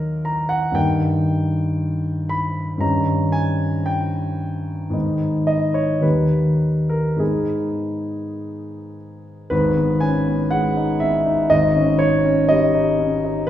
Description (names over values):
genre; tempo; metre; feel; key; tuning
classical, romantic character piece for solo piano; 50-61 BPM; 2/4; rubato; G# minor; A4 = 440 Hz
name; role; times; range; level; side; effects
warm concert grand piano; solo; 0.0-13.5 s; G#1 to B5; -18 LUFS; equal; none
room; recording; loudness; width
wet recital hall reverb, RT60 1.5 s; heard from further back in the room; -17 LUFS; side -11 dB against mid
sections
0.0-9.5 A section; 9.5-13.5 B section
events
none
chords
0.0 Ebm; 0.8 D#/G; 2.8 D#7/G; 4.9 G#m; 6.0 D#; 7.2 G#m; 11.5 D#7/G#